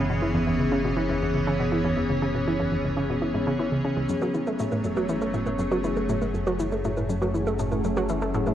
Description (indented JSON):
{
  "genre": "ambient, sequencer-driven space music",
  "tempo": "120 BPM",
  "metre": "4/4",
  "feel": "straight",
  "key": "F# minor",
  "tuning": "A4 = 438 Hz",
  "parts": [
    { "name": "evolving wavetable pad", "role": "sustained chords", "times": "0.0-8.5 s", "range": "E3 to C#5", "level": "-26 LUFS", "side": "equal", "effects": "chorus, built-in reverb" },
    { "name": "fat analog bass", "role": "bass", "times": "0.0-8.5 s", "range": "F#1", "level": "-32 LUFS", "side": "equal", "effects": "none" },
    { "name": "analog pluck", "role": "riff", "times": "0.1-8.5 s", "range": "C#2 to A3", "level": "-27 LUFS", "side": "equal", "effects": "chorus, tape echo" },
    { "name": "shaker and bongos", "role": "percussion", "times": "4.1-8.5 s", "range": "none", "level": "-38 LUFS", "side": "left 1 dB", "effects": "tape echo" }
  ],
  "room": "wet concert hall reverb, RT60 2.0 s, digital ambience",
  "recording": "worn, warbling old tape, cassette tape, warbly pitch drift",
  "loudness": "-23 LUFS",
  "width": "side -11 dB against mid",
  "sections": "0.0-4.1 A section; 4.1-8.5 B section",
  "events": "filter sweep on synth arpeggio sound 0.0-4.1",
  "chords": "0.0 C#m7/F#; 4.1 F#madd9"
}